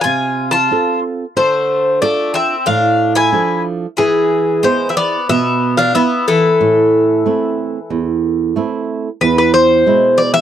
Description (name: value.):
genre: greek folk, Greek bouzouki band.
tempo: 92 BPM.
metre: 4/4.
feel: straight.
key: unclear.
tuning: A4 = 440 Hz.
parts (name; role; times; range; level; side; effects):
Greek bouzouki; melody; 0.0-10.4 s; G#4 to A5; -14 LUFS; left 2 dB; none.
Greek bouzouki; second line; 0.0-8.8 s; E3 to F4; -20 LUFS; left 3 dB; none.
flamenco guitar; accompaniment; 0.1-10.4 s; E2 to B4; -17 LUFS; right 6 dB; none.
room: moderate booth ambience, RT60 0.2 s.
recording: dry, close 1970s-style studio recording.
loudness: -12 LUFS.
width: side -10 dB against mid.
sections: 0.0-9.2 A section; 9.2-10.4 B section.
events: none.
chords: 0.0 F; 1.4 Dm; 4.0 E; 6.6 Am; 9.2 E.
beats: 0.05 0.71 | 1.36 2.02 2.67 3.33 | 3.98 4.64 5.29 5.94 | 6.60 7.25 7.90 8.55 | 9.20 9.85.